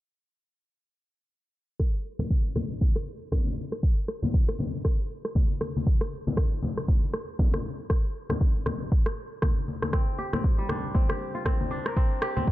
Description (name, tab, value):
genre	afro house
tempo	118 BPM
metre	4/4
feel	swing 58% on 16ths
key	unclear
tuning	A4 = 439 Hz
part	electronic kick drum	drums	1.8-12.5 s	none	-24 LUFS	equal	none
part	electronic rim click	drums	1.8-12.3 s	none	-35 LUFS	equal	none
part	congas	percussion	2.2-12.5 s	none	-32 LUFS	left 2 dB	none
part	kora	arpeggios	9.9-12.5 s	G3 to Bb4	-32 LUFS	equal	sidechain pumping, digital delay
room	little or no reverb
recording	low-pass filter, nothing above 10.6 kHz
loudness	-25 LUFS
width	side -16 dB against mid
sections	1.8-12.5 A section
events	filter sweep 1.8-12.5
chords	1.8 N.C.; 9.9 Gm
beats	| 1.80 2.31 2.81 3.32 | 3.83 4.34 4.85 5.36 | 5.86 6.37 6.88 7.39 | 7.90 8.41 8.91 9.42 | 9.93 10.44 10.95 11.46 | 11.97 12.47